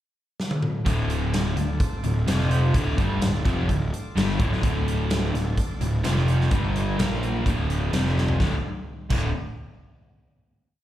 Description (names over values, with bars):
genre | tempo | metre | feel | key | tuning
classic rock | 127 BPM | 4/4 | straight | D minor | A4 = 437 Hz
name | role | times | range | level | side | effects
huge arena drum kit | drums | 0.4-9.2 s | crash cymbal, hi-hat, kick drum, snare drum, toms | -27 LUFS | equal | none
crunchy overdriven guitar | riff | 0.8-9.3 s | D2 to Bb3 | -29 LUFS | right 6 dB | spring reverb
tonewheel organ | sustained chords | 0.9-8.7 s | Bb3 to G5 | -40 LUFS | equal | none
raw garage guitar | riff | 0.9-9.3 s | D2 to Bb3 | -29 LUFS | left 6 dB | overdrive, spring reverb, slapback echo
fuzz picked electric bass | bass | 0.9-9.3 s | D1 to Bb1 | -25 LUFS | equal | overdrive
room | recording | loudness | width
light reverb | live gig heard through the venue's PA, club reverb | -21 LUFS | side -13 dB against mid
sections
0.0-0.9 pickup bar; 0.9-8.4 riff; 8.4-10.3 final chord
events
drum fill 0.4-0.9, 8.2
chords
0.0 N.C.; 0.9 Dm; 2.3 F5; 2.7 Dm; 6.0 F5; 6.5 G5; 7.0 Bb5; 7.5 Dm; 7.9 F5; 8.4 Dm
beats
0.39 | 0.86 1.33 1.80 2.28 | 2.75 3.22 3.69 4.17 | 4.64 5.11 5.58 6.05 | 6.52 6.99 7.46 7.93 | 8.39 8.86